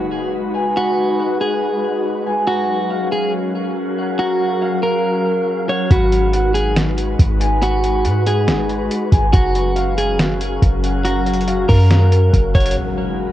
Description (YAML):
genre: hip hop, atmospheric cloud-rap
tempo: 140 BPM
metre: 4/4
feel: half-time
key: G# dorian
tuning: A4 = 439 Hz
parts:
  - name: glassy FM pad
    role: sustained chords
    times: 0.0-13.3 s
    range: F#3 to B4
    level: -23 LUFS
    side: left 1 dB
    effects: ensemble chorus, built-in reverb, sidechain pumping, cassette tape
  - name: concert harp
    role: arpeggios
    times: 0.0-13.3 s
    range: E#5 to B5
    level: -26 LUFS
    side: equal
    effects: low-pass filter, cassette tape, tape echo
  - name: impact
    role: sound effects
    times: 0.0-0.8, 12.8-13.3 s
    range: none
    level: -30 LUFS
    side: equal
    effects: none
  - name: wind-like tuned noise texture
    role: texture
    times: 0.0-12.7 s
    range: F#3 to E#5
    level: -27 LUFS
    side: left 1 dB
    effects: built-in reverb, cassette tape
  - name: clean electric guitar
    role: melody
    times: 0.8-12.8 s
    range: F#4 to C#5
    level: -20 LUFS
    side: equal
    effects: low-pass filter, cassette tape, tape echo
  - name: clean 808-style bass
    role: bass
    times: 5.9-12.8 s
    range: F#1 to G#2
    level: -17 LUFS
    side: equal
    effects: none
  - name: lo-fi sampler-style drum kit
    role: drums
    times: 5.9-12.8 s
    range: hi-hat, kick drum, snare drum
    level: -17 LUFS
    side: equal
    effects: overdrive, cassette tape
room: digital ambience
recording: home recording on cassette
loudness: -14 LUFS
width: side -13 dB against mid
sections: 0.0-12.8 A section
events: impact 0.0-0.8, 12.8-13.3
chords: 0.0 G#m7; 2.5 F#maj7; 5.9 G#m7; 9.3 F#maj7; 12.8 G#m7